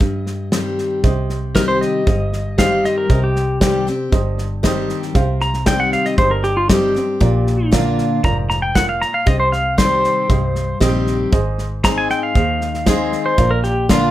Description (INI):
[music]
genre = honky-tonk and classic country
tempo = 117 BPM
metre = 4/4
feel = straight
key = C minor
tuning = A4 = 440 Hz
[part]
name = pedal steel guitar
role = melody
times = 0.0-14.1 s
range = F4 to Bb5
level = -19 LUFS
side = equal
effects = none
[part]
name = picked steel-string acoustic guitar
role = accompaniment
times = 0.0-14.1 s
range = G2 to Ab4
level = -21 LUFS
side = left 2 dB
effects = none
[part]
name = fingered electric bass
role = bass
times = 0.0-14.1 s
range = F1 to G2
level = -22 LUFS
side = equal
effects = none
[part]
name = natural country drum kit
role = drums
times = 0.0-14.0 s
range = hi-hat, kick drum, snare drum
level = -18 LUFS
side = equal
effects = none
[part]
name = dark upright piano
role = accompaniment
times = 1.0-14.1 s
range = F4 to F5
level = -25 LUFS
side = right 4 dB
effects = none
[sound]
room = moderate studio ambience, RT60 0.5 s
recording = none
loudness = -15 LUFS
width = side -14 dB against mid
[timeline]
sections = 0.0-1.0 A section; 1.0-14.1 B section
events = pedal steel guitar solo 1.0-14.1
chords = 0.0 Cm; 7.2 Bb; 9.3 Cm; 11.3 Ab; 13.4 Bb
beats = 0.01 0.52 | 1.04 1.55 2.07 2.58 | 3.10 3.61 4.13 4.64 | 5.16 5.67 6.18 6.70 | 7.21 7.73 8.24 8.75 | 9.27 9.78 10.30 10.81 | 11.32 11.84 12.35 12.87 | 13.38 13.90